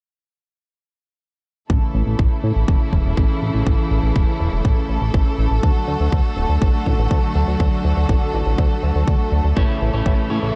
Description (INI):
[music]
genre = italo disco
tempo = 122 BPM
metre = 4/4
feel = straight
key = A major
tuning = A4 = 440 Hz
[part]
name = clear symphonic string section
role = sustained chords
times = 1.7-10.6 s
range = C#3 to A4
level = -26 LUFS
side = equal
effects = none
[part]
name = chorused synth bass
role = bass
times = 1.7-10.5 s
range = D1 to A2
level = -22 LUFS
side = equal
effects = tube saturation
[part]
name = electronic kick drum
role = drums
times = 1.7-10.2 s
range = none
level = -20 LUFS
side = equal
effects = none
[part]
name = electric guitar at the edge of break-up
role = stabs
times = 9.6-10.6 s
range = A3 to C#5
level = -28 LUFS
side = equal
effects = subtle chorus, digital delay
[sound]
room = digital ambience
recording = dark, warm production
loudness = -19 LUFS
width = mono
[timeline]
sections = 1.7-10.6 A section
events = none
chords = 1.7 A; 5.6 D; 9.6 A